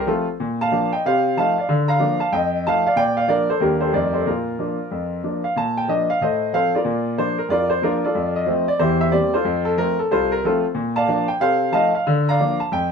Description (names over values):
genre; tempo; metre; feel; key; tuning
jazz, stride piano; 185 BPM; 4/4; swing 63% on 8ths; Bb major; A4 = 440 Hz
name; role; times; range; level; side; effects
clear concert grand piano; solo; 0.0-12.9 s; C2 to Bb5; -18 LUFS; equal; none
room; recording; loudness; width
wet club ambience, RT60 0.5 s; heard from further back in the room; -18 LUFS; side -6 dB against mid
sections
0.0-5.6 A section; 5.6-12.9 A section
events
none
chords
0.4 Bb; 1.0 F7/C; 1.7 Bb/D; 2.3 F7; 3.0 Bb; 3.6 Ebmaj7; 3.9 F9; 4.3 Bb; 6.2 F7/A; 6.9 Bb; 8.2 F; 8.8 C7/E; 9.5 F; 10.8 Bb; 11.4 F7/C; 12.1 Bb/D